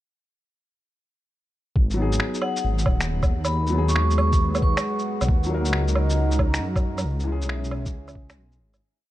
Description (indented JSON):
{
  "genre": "future garage",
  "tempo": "136 BPM",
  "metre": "4/4",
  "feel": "swing 66% on 16ths",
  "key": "G# minor",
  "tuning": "A4 = 441 Hz",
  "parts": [
    { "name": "dark detuned saw bass", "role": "bass", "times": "1.8-8.8 s", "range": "D#1 to F#2", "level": "-23 LUFS", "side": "equal", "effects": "sidechain pumping" },
    { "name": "electronic kick drum", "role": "drums", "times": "1.8-8.3 s", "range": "none", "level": "-22 LUFS", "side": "equal", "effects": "none" },
    { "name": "felt-muted upright piano", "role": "accompaniment", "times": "1.9-8.8 s", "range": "E3 to A#4", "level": "-30 LUFS", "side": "left 2 dB", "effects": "sidechain pumping, tape echo" },
    { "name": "electronic shaker, finger snaps and woodblock", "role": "drums", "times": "1.9-8.8 s", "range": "none", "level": "-29 LUFS", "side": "right 1 dB", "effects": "none" },
    { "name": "vibraphone with hard mallets", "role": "melody", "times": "2.4-5.0 s", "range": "F#5 to C#6", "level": "-30 LUFS", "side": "equal", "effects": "tape echo" },
    { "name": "dark analog pad", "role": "sustained chords", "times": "3.5-8.8 s", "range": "G#3 to A#5", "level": "-30 LUFS", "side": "right 1 dB", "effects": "chorus, sidechain pumping" }
  ],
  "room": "digital ambience",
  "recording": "none",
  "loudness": "-20 LUFS",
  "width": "side -14 dB against mid",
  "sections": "1.8-8.8 groove",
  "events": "fade-out 6.5-8.8",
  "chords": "1.8 G#m7; 5.3 D#m; 7.0 C#m"
}